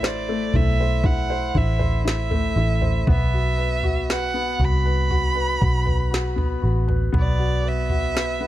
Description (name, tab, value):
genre	pop ballad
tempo	59 BPM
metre	4/4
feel	straight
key	unclear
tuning	A4 = 440 Hz
part	warm violin	melody	0.0-8.5 s	D5 to B5	-26 LUFS	right 4 dB	none
part	clear baby grand piano	accompaniment	0.0-8.5 s	A3 to C5	-27 LUFS	left 3 dB	none
part	vintage muted fingered electric bass	bass	0.0-8.5 s	A1 to C2	-22 LUFS	equal	none
part	smooth R&B drum kit	drums	0.0-8.4 s	kick drum, snare drum, toms	-25 LUFS	equal	none
room	small room ambience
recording	dark, warm production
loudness	-19 LUFS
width	side -14 dB against mid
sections	0.0-8.5 A section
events	none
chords	0.0 Am; 3.1 Bsus4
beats	0.03 1.04 2.06 | 3.08 4.09 5.11 6.13 | 7.14 8.16